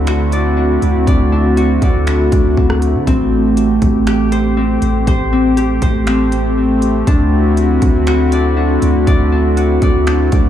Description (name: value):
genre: hip hop, atmospheric cloud-rap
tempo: 120 BPM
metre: 4/4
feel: half-time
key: A dorian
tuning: A4 = 437 Hz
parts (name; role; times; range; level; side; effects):
- warbly tape-like pad; sustained chords; 0.0-10.5 s; D3 to G4; -14 LUFS; equal; chorus, built-in reverb, sidechain pumping
- Celtic harp; arpeggios; 0.0-10.5 s; C4 to D5; -20 LUFS; left 2 dB; low-pass filter, tape echo
- long sustained 808-style bass; bass; 0.0-10.5 s; A1 to D3; -16 LUFS; equal; none
- trap drum kit; drums; 0.1-10.4 s; finger snaps, hi-hat, kick drum, rim click; -16 LUFS; equal; none
room: moderate cathedral reverb, RT60 5.6 s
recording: dreamy mix soaked in reverb, small room reverb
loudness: -11 LUFS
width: side -10 dB against mid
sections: 0.0-3.1 A section; 3.1-10.5 B section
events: none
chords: 0.0 D7; 3.1 Am7; 7.1 D7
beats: 0.07 0.57 | 1.07 1.57 2.07 2.57 | 3.07 3.57 4.07 4.57 | 5.07 5.57 6.07 6.57 | 7.07 7.57 8.07 8.57 | 9.07 9.57 10.07